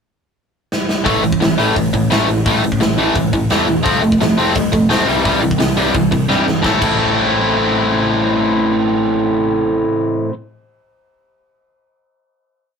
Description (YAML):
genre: punk rock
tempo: 172 BPM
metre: 4/4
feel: straight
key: A minor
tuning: A4 = 440 Hz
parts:
  - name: big rock drum kit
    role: drums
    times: 0.7-6.9 s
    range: crash cymbal, hi-hat, kick drum, snare drum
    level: -20 LUFS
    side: equal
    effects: none
  - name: biting overdriven guitar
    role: riff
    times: 1.0-10.3 s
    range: A2 to A4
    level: -14 LUFS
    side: equal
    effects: none
  - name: overdriven picked electric bass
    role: bass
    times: 1.1-9.8 s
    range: E1 to G2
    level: -24 LUFS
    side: equal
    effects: none
room: moderate small room reverb, RT60 0.5 s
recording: rough rehearsal-room recording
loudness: -13 LUFS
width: side -6 dB against mid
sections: 0.0-1.1 pickup bar; 1.1-6.6 verse; 6.6-9.4 final chord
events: drum fill 0.7-1.1, 6.3-6.6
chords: 0.0 N.C.; 1.1 A5; 3.9 F; 5.1 C; 6.6 Am